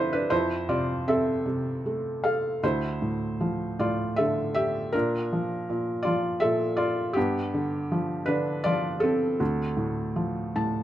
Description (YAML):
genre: classical, lyrical solo piano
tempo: 80 BPM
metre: 3/4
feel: rubato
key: D minor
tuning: A4 = 440 Hz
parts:
  - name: felt-muted upright piano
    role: solo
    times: 0.0-10.8 s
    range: D2 to A5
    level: -24 LUFS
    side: equal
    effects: none
room: light reverb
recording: close, detailed microphones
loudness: -24 LUFS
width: side -12 dB against mid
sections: 0.0-10.8 A section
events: felt piano fill 10.2-10.8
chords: 0.3 Fmaj7; 2.6 Dmadd9; 4.9 Bbmaj7; 7.2 G7; 9.4 Dm7